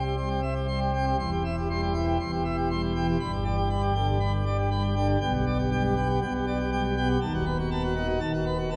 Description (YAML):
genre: classical, organ toccata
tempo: 119 BPM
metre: 4/4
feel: straight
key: unclear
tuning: A4 = 445 Hz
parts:
  - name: pipe organ, plenum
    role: solo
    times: 0.0-8.8 s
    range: D#1 to C6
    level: -27 LUFS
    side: equal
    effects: none
room: wet cathedral reverb, RT60 4.4 s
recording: recorded in a church or concert hall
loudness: -27 LUFS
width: mono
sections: 0.0-8.8 A section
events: none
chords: 0.0 C; 1.2 C/E; 3.2 G; 5.2 G/B; 7.2 B7/D#